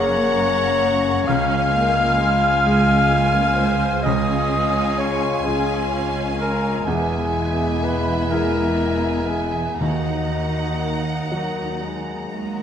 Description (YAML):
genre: cinematic, emotional film score for orchestra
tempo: 42 BPM (dotted quarters)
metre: 6/8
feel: uneven beats, rubato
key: unclear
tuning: A4 = 440 Hz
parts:
  - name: dark symphonic violin section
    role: melody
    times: 0.0-12.6 s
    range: F5 to Bb5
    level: -32 LUFS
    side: left 2 dB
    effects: none
  - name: mellow clarinet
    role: second line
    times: 0.0-11.3 s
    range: Eb4 to F5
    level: -24 LUFS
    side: left 1 dB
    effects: none
  - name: silver concert flute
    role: second line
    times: 0.0-11.3 s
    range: Eb5 to F6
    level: -26 LUFS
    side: equal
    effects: none
  - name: warm symphonic violin section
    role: second line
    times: 0.0-12.6 s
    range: E5 to Ab5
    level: -29 LUFS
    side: left 1 dB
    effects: none
  - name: felt-muted upright piano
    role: accompaniment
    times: 0.0-12.6 s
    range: Db2 to Bb4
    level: -27 LUFS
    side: right 1 dB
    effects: none
  - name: warm symphonic viola section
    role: accompaniment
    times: 0.0-12.6 s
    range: Ab3 to C5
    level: -30 LUFS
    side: equal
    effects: none
  - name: warm French horn section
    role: sustained chords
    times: 0.0-12.6 s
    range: Gb3 to Gb4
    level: -27 LUFS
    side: left 5 dB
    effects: none
  - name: concert harp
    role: arpeggios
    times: 0.0-12.6 s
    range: Gb2 to Gb5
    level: -31 LUFS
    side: left 7 dB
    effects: none
  - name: dark symphonic double bass section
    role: bass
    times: 0.0-12.6 s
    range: E1 to Eb2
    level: -28 LUFS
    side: right 3 dB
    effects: none
  - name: warm symphonic cello section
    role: bass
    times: 0.0-12.6 s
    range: Db2 to Gb2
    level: -28 LUFS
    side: right 4 dB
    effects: none
  - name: timpani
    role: percussion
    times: 9.8-11.3 s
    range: Eb3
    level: -31 LUFS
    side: right 3 dB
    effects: none
  - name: warm cello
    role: melody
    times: 12.3-12.6 s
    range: Ab3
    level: -28 LUFS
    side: right 6 dB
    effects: none
room: moderate scoring stage reverb, RT60 1.7 s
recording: none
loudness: -18 LUFS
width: side -8 dB against mid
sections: 0.0-12.6 A section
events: none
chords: 0.0 Gbadd9; 1.3 Db; 6.9 E; 9.8 Ebm